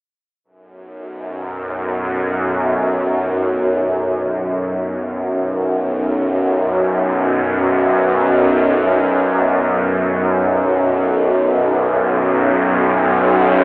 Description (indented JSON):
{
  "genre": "ambient",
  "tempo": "free time",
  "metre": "none",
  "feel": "none",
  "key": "unclear",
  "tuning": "A4 = 441 Hz",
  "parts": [
    { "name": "bowed-like drone", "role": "drone", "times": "1.0-13.6 s", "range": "B1 to F#2", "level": "-14 LUFS", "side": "equal", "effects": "built-in reverb, phaser" }
  ],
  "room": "wet cathedral reverb, RT60 6.2 s",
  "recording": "telephone sound",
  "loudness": "-14 LUFS",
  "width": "side -34 dB against mid",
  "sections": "0.4-13.6 A section",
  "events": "none",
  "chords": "0.4 B5"
}